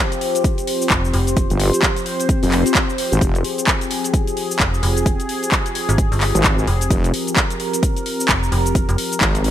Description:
bass house; 130 BPM; 4/4; swing 59% on 16ths; F minor; A4 = 442 Hz
sweeping resonant pad; sustained chords; 0.0-9.5 s; F3 to C5; -22 LUFS; left 1 dB; chorus, phaser, sidechain pumping
house drum kit; drums; 0.1-9.5 s; cabasa, handclaps, hi-hat; -21 LUFS; equal; overdrive
electronic kick drum; drums; 0.4-9.3 s; -19 LUFS; equal; overdrive
metallic FM bass; bass; 0.9-1.5, 4.6-9.0 s; F1 to Ab1; -19 LUFS; equal; overdrive, sidechain pumping
wobble bass; bass; 1.5-3.4, 6.3-9.5 s; F1 to Ab1; -18 LUFS; equal; chorus, overdrive, sidechain pumping
light reverb, digital ambience; -16 LUFS; side -11 dB against mid
0.0-9.5 A section
0.0 Fmadd9
0.44 0.91 | 1.37 1.83 2.29 2.75 | 3.21 3.67 4.14 4.60 | 5.06 5.52 5.98 6.44 | 6.91 7.37 7.83 8.29 | 8.75 9.21

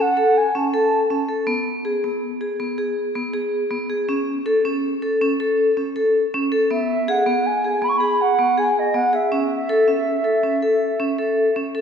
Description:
contemporary instrumental, contemporary; 161 BPM; 7/4; straight; A4 = 440 Hz
baroque flute; melody; 0.0-1.3, 6.7-11.6 s; D#5 to C#6; -20 LUFS; right 2 dB
vibraphone with hard mallets; arpeggios; 0.0-11.8 s; B3 to A4; -19 LUFS; left 1 dB
wet concert hall reverb, RT60 2.4 s; heard from further back in the room, nothing above 10.7 kHz; -18 LUFS; side -7 dB against mid
0.0-11.8 A section
0.0 A; 1.5 G#m/B; 4.1 A; 6.7 E; 9.3 A
0.36 0.73 1.11 | 1.48 1.85 2.23 2.60 2.97 3.35 3.72 | 4.09 4.46 4.84 5.21 5.58 5.96 6.33 | 6.70 7.08 7.45 7.82 8.20 8.57 8.94 | 9.31 9.69 10.06 10.44 10.81 11.18 11.55

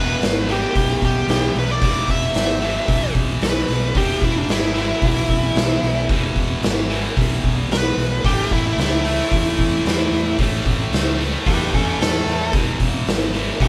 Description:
blues rock power trio and southern rock; 112 BPM; 4/4; straight; E major; A4 = 440 Hz
bluesy overdriven lead guitar; melody; 0.0-13.7 s; C#4 to E5; -24 LUFS; equal; distortion
distorted electric guitar; riff; 0.0-13.7 s; E2 to A3; -26 LUFS; equal; overdrive
overdriven fingered electric bass; bass; 0.0-13.7 s; E1 to E2; -26 LUFS; equal
oversized low-tuned drum kit; drums; 0.2-13.7 s; hi-hat, kick drum, snare drum; -23 LUFS; equal
light reverb; band playing live in one room; -19 LUFS; mono
0.0-13.7 A section
lead electric guitar solo 0.0-13.7
0.0 E; 8.2 A; 12.5 E
0.21 0.75 1.28 | 1.81 2.35 2.88 3.42 | 3.95 4.49 5.02 5.56 | 6.09 6.63 7.17 7.70 | 8.24 8.78 9.31 9.85 | 10.39 10.92 11.46 11.99 | 12.53 13.07 13.60

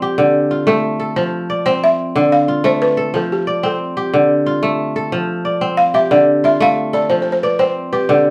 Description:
west african traditional; 121 BPM (dotted quarters); 12/8; straight; F major; A4 = 441 Hz
balafon; melody; 0.0-8.3 s; G4 to F5; -18 LUFS; equal
kora; arpeggios; 0.0-8.3 s; D3 to D5; -18 LUFS; equal
wet studio reverb, RT60 0.6 s; band playing live in one room; -16 LUFS; mono
0.0-8.3 A section
0.2 Dm; 1.2 F; 2.2 Dm; 3.1 F; 4.1 Dm; 5.1 F; 6.1 Dm; 7.1 F
0.18 0.67 | 1.17 1.66 2.16 2.65 | 3.14 3.64 4.13 4.63 | 5.12 5.62 6.11 6.61 | 7.10 7.59 8.09

